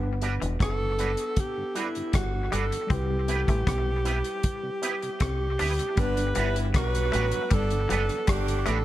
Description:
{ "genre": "lovers rock reggae", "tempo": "78 BPM", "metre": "4/4", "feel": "straight", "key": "G major", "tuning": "A4 = 440 Hz", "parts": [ { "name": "mellow tonewheel organ", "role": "accompaniment", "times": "0.0-8.7 s", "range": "G2 to F#4", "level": "-41 LUFS", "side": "right 3 dB", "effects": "none" }, { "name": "tine electric piano", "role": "accompaniment", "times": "0.0-8.8 s", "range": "G3 to F#5", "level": "-37 LUFS", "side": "left 2 dB", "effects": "overdrive, fast stereo tremolo" }, { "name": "twangy electric guitar", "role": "riff", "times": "0.0-8.8 s", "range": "E3 to D4", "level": "-37 LUFS", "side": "left 5 dB", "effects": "dub echo" }, { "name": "deep dub fingered electric bass", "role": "bass", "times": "0.0-8.8 s", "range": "E1 to D2", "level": "-28 LUFS", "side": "equal", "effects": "none" }, { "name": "electric guitar with an envelope filter", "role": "stabs", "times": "0.2-8.8 s", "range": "G3 to B4", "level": "-33 LUFS", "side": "right 6 dB", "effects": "ensemble chorus" }, { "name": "damped 70s drum kit", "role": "drums", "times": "0.2-8.8 s", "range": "hi-hat, kick drum, rim click", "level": "-28 LUFS", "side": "equal", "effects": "gated reverb" }, { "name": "breathy alto saxophone", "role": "melody", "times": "0.6-8.8 s", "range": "E4 to B4", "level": "-30 LUFS", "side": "right 1 dB", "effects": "tape echo" }, { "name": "edgy saxophone section", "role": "second line", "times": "6.0-8.8 s", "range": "D3 to F#4", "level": "-34 LUFS", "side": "right 4 dB", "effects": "none" } ], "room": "light reverb, small room ambience", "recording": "none", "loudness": "-24 LUFS", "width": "side -14 dB against mid", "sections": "0.0-6.0 A section; 6.0-8.8 B section", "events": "none", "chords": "0.0 Gmaj7; 2.9 Cmaj7; 6.0 Gmaj7" }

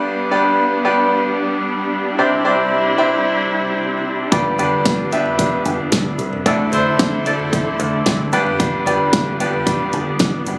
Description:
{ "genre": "piano-driven pop", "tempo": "112 BPM", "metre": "4/4", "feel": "straight", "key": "G major", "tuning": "A4 = 436 Hz", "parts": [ { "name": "bright baby grand piano", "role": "accompaniment", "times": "0.0-10.6 s", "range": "G2 to E5", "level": "-20 LUFS", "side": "equal", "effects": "plate reverb" }, { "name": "warm studio string section", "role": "sustained chords", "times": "0.0-10.6 s", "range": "C3 to A4", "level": "-25 LUFS", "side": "equal", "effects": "plate reverb" }, { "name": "picked electric bass", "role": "bass", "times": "4.3-10.6 s", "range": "F#1 to D2", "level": "-25 LUFS", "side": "equal", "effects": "none" }, { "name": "pop drum kit", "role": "drums", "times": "4.3-10.6 s", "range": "hi-hat, kick drum, snare drum, toms", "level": "-22 LUFS", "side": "equal", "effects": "none" } ], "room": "light reverb", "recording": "recorded on a phone in the room, club reverb", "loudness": "-18 LUFS", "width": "mono", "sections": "0.0-10.6 A section", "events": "none", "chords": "0.0 G; 2.2 Cadd9; 4.3 G; 6.5 Dsus2; 8.3 G" }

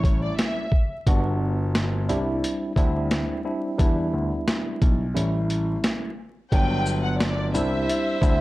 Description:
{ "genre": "hip hop, boom-bap hip-hop", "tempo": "88 BPM", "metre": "4/4", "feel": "swing 55% on 16ths", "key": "G major", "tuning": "A4 = 440 Hz", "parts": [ { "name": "warm studio violin section", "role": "melody", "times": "0.0-0.7, 6.5-8.4 s", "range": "C#5 to G5", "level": "-29 LUFS", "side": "left 1 dB", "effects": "high-pass filter, low-pass filter, analog delay" }, { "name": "tine electric piano", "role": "accompaniment", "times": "0.0-8.4 s", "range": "F#3 to F#4", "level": "-27 LUFS", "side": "equal", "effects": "overdrive, fast stereo tremolo, high-pass filter, low-pass filter" }, { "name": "dark concert grand piano", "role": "bass", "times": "0.0-8.4 s", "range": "G1 to E2", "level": "-26 LUFS", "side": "equal", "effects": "tube saturation" }, { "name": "boom bap sampler-style drum kit", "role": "drums", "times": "0.0-8.4 s", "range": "hi-hat, kick drum, shaker, snare drum", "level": "-23 LUFS", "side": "equal", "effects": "none" }, { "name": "clear saxophone section", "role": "stabs", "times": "6.5-8.4 s", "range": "F#3 to C5", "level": "-32 LUFS", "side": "left 1 dB", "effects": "high-pass filter, low-pass filter" } ], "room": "light reverb", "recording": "dry, gritty hardware recording, vinyl crackle", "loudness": "-21 LUFS", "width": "side -18 dB against mid", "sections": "0.0-6.5 A section; 6.5-8.4 B section", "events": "break 5.2-6.5", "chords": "0.0 A7; 1.1 Gmaj7; 2.1 Cadd9; 3.8 Em7; 5.2 A7; 6.5 Gmaj7; 7.5 Cadd9" }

